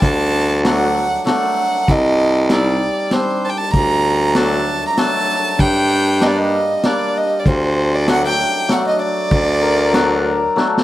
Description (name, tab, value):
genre	klezmer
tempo	97 BPM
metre	3/4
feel	straight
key	D phrygian dominant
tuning	A4 = 440 Hz
part	warm violin	melody	0.0-10.5 s	C5 to Bb5	-18 LUFS	right 2 dB	none
part	hammered dulcimer	accompaniment	0.0-10.8 s	F#3 to Eb4	-21 LUFS	left 2 dB	none
part	edgy baritone saxophone	bass	0.0-10.4 s	C2 to G2	-17 LUFS	equal	none
part	street-band drum kit	drums	0.0-10.8 s	hi-hat, kick drum, snare drum	-17 LUFS	equal	none
part	mellow accordion	second line	9.6-10.8 s	A4 to Bb4	-18 LUFS	left 4 dB	none
room	small room ambience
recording	dry, close 1970s-style studio recording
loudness	-14 LUFS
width	side -14 dB against mid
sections	0.0-10.8 A section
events	drum fill 10.6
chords	0.0 D; 1.9 Cm; 3.7 D; 5.6 Gm; 7.5 D